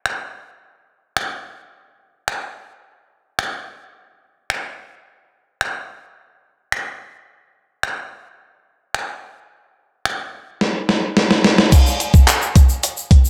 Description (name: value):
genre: pop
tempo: 108 BPM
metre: 4/4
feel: straight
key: none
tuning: none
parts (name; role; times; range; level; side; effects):
- gated 80s digital drum machine; drums; 0.1-13.2 s; crash cymbal, finger snaps, handclaps, hi-hat, kick drum, snare drum; -17 LUFS; equal; gated reverb, gated reverb snare
- egg shaker; percussion; 11.7-13.3 s; none; -29 LUFS; equal; none
room: light reverb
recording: none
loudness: -18 LUFS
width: mono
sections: 0.0-11.7 A section; 11.7-13.3 B section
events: drum fill 10.6-11.7; drop 11.7-13.3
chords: none